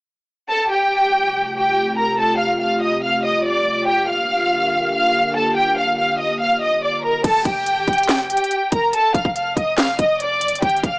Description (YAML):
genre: hip hop, trap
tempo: 142 BPM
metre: 4/4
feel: half-time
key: unclear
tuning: A4 = 440 Hz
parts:
  - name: rich studio violin section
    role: melody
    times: 0.5-11.0 s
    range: G4 to F6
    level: -17 LUFS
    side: equal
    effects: low-pass filter, cassette tape
  - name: dark analog pad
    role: sustained chords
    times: 1.2-7.2 s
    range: C3 to G4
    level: -24 LUFS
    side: equal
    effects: chorus
  - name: warm 808-style bass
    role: bass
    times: 7.2-11.0 s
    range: F1 to C2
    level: -36 LUFS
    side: equal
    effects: none
  - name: trap drum kit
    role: drums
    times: 7.2-10.9 s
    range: crash cymbal, handclaps, hi-hat, kick drum, snare drum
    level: -20 LUFS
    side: equal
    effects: cassette tape
room: light reverb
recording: home recording on cassette, small speaker sound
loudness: -16 LUFS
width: side -31 dB against mid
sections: 0.5-7.2 A section; 7.2-11.0 B section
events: none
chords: 0.5 Fadd9; 3.9 Gm7; 7.2 Fadd9